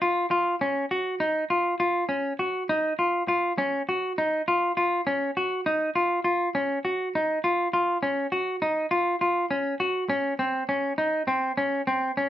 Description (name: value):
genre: progressive instrumental, progressive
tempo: 202 BPM (eighths)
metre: 5/8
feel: straight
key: Eb dorian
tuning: A4 = 441 Hz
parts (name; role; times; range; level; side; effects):
- semi-hollow electric guitar; solo; 0.0-12.3 s; C4 to Gb4; -23 LUFS; equal; none
room: moderate studio reverb, RT60 0.6 s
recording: band playing live in one room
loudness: -23 LUFS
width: side -12 dB against mid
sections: 0.0-10.1 A section; 10.1-12.3 B section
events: none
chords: none